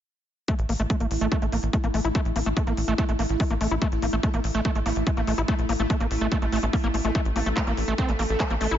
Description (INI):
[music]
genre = psychedelic trance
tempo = 144 BPM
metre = 4/4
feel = straight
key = unclear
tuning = A4 = 440 Hz
[part]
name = pulsing gated texture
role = sustained chords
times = 0.8-8.8 s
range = A3 to A4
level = -31 LUFS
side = equal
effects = chorus, built-in reverb, vintage 12-bit sampler grit, sidechain pumping
[part]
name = overdriven acid bass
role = riff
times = 0.5-8.8 s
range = A3 to E4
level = -28 LUFS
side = moving between left 4 dB and right 4 dB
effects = distortion, auto-pan, sidechain pumping, digital delay
[part]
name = big-room dance drum kit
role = drums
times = 0.5-8.8 s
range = handclaps, hi-hat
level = -36 LUFS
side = equal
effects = overdrive
[part]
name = electronic kick drum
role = drums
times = 0.5-8.5 s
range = none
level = -25 LUFS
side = equal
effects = overdrive
[part]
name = tight sequencer bass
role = bass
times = 0.6-8.8 s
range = A1 to Bb1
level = -27 LUFS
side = equal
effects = tube saturation
[sound]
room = light reverb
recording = nothing above 7.5 kHz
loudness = -22 LUFS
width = side -10 dB against mid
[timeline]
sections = 0.5-8.8 A section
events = filter sweep on acid bass 0.5-8.8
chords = 0.5 A5